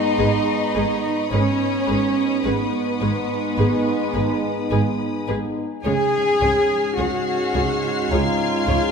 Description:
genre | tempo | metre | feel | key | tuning
cinematic, suspense film score | 53 BPM | 4/4 | straight | G# dorian | A4 = 436 Hz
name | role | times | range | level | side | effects
dark studio violin section | second line | 0.0-8.9 s | B4 to G#5 | -29 LUFS | left 3 dB | none
bright trombone section | sustained chords | 0.0-8.9 s | G#2 to G#3 | -28 LUFS | right 3 dB | none
warm French horn section | sustained chords | 0.0-8.9 s | B3 to G#4 | -27 LUFS | left 3 dB | none
warm studio cello section | bass | 0.0-8.9 s | B3 to G#4 | -22 LUFS | right 1 dB | none
dark symphonic violin section | texture | 0.0-8.9 s | B5 to B#6 | -31 LUFS | left 5 dB | none
vibraphone with medium hard mallets | texture | 0.0-8.9 s | B4 to C#6 | -39 LUFS | left 2 dB | none
rich studio violin section | melody | 0.2-8.8 s | B4 to C#5 | -35 LUFS | left 5 dB | none
warm studio viola section | accompaniment | 0.2-8.8 s | G#3 to G#4 | -30 LUFS | left 2 dB | none
warm studio cello section | riff | 0.2-8.9 s | G#2 to C#4 | -29 LUFS | right 3 dB | none
warm studio double bass section | bass | 0.2-8.8 s | G#1 to C#2 | -26 LUFS | right 3 dB | none
room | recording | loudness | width
moderate concert hall reverb, RT60 2.2 s | minimal, uncompressed stereo recording | -18 LUFS | side -6 dB against mid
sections
0.0-8.9 A section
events
none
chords
0.0 G#m; 5.8 C#

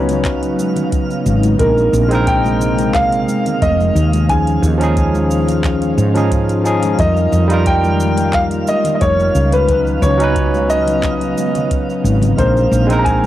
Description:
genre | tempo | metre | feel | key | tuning
sunset chillout | 89 BPM | 4/4 | straight | unclear | A4 = 440 Hz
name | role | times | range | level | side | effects
barky tine electric piano | accompaniment | 0.0-13.3 s | F3 to Cb5 | -18 LUFS | moving between left 3 dB and right 4 dB | auto-pan, cassette tape, analog delay
ethereal airy pad | sustained chords | 0.0-13.3 s | C3 to F4 | -23 LUFS | equal | ensemble chorus, built-in reverb, cassette tape
woody fretless electric bass | bass | 0.0-13.3 s | F1 to Ab2 | -16 LUFS | equal | none
twinkling granular texture | texture | 0.0-13.3 s | F5 | -30 LUFS | right 4 dB | built-in reverb, cassette tape, plate reverb
smooth R&B drum kit | drums | 0.1-13.3 s | cabasa, handclaps, hi-hat | -29 LUFS | equal | studio reverb, cassette tape
congas | percussion | 0.1-13.3 s | none | -26 LUFS | left 1 dB | none
electronic kick drum | drums | 0.2-13.2 s | none | -20 LUFS | equal | studio reverb, cassette tape
warm concert grand piano | melody | 1.6-13.3 s | Bb4 to Bb5 | -18 LUFS | equal | cassette tape, analog delay, plate reverb
room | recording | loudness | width
light reverb | home recording on cassette | -12 LUFS | side -13 dB against mid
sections
0.0-13.3 A section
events
none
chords
0.0 Db9sus4; 1.6 Bb9sus4; 4.0 Eb9sus4; 7.0 F9sus4; 9.7 Db9sus4; 12.4 Bb9sus4

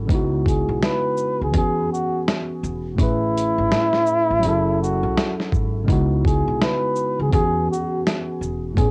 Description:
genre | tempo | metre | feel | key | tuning
lo-fi hip hop | 83 BPM | 4/4 | swing 62% on 16ths | unclear | A4 = 443 Hz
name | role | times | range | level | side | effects
tine electric piano | accompaniment | 0.0-8.9 s | A2 to B4 | -27 LUFS | equal | cassette tape
upright bass | bass | 0.0-8.9 s | E1 to E2 | -27 LUFS | equal | none
dusty soul sampler-style drum kit | drums | 0.1-8.9 s | hi-hat, kick drum, shaker, snare drum | -24 LUFS | equal | none
breathy flugelhorn | melody | 0.5-8.9 s | E4 to B4 | -25 LUFS | equal | cassette tape, tape echo
room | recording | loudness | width
moderate small room reverb, RT60 0.5 s | home recording on cassette | -21 LUFS | mono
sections
0.0-8.9 A section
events
none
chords
0.1 C#m11; 1.5 E69; 3.0 Amaj7; 4.4 F#m9; 5.9 C#m11; 7.3 E69

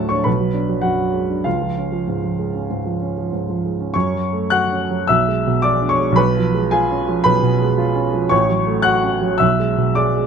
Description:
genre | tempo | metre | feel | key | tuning
classical, romantic character piece for solo piano | 94-113 BPM | 4/4 | rubato | F# minor | A4 = 440 Hz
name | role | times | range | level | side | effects
warm baby grand piano | solo | 0.0-10.3 s | A1 to F#6 | -16 LUFS | right 1 dB | none
room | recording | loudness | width
light reverb | close, detailed microphones | -16 LUFS | side -6 dB against mid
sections
0.0-3.9 A section; 3.9-10.3 B section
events
none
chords
0.3 G#m7b5/B; 1.5 C#; 3.9 F#m; 5.1 G#dim/B; 6.2 C#7/B; 8.3 F#m/A; 9.4 G#dim/B

